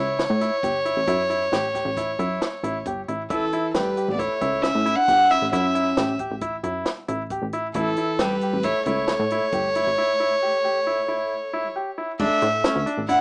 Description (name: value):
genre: progressive instrumental, band music in an uneven meter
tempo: 135 BPM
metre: 5/4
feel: straight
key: A mixolydian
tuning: A4 = 437 Hz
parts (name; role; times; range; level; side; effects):
- rich violin; melody; 0.0-13.2 s; A4 to F#5; -22 LUFS; equal; digital delay
- bright grand piano; arpeggios; 0.0-13.2 s; C#4 to G4; -28 LUFS; equal; none
- plucky analog bass; bass; 0.0-13.2 s; G1 to A2; -28 LUFS; equal; none
- compact cocktail drum kit; drums; 0.2-13.2 s; crash cymbal, hi-hat, kick drum, snare drum; -27 LUFS; equal; none
- electric guitar at the edge of break-up; second line; 3.3-13.2 s; E3 to D4; -28 LUFS; equal; none
room: light reverb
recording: rough home demo mix, small speaker sound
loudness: -20 LUFS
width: side -31 dB against mid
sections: 0.0-12.2 A section; 12.2-13.2 B section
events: none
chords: 0.0 A7; 12.2 Asus4